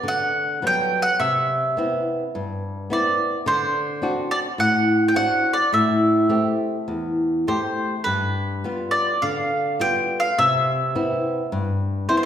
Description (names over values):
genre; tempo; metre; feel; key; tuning
fado-style ballad; 105 BPM; 4/4; rubato; G major; A4 = 439 Hz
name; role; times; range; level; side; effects
flamenco guitar; accompaniment; 0.0-12.3 s; E2 to G4; -23 LUFS; left 1 dB; none
mandolin; melody; 0.1-12.3 s; B4 to G5; -21 LUFS; right 1 dB; none
room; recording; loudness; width
wet recital hall reverb, RT60 1.5 s; recorded in a church or concert hall; -19 LUFS; side -9 dB against mid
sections
0.0-12.3 A section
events
none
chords
0.0 Gmaj7; 1.2 Cmaj7; 3.5 D7; 5.7 Am7; 8.1 G7; 10.4 Cmaj7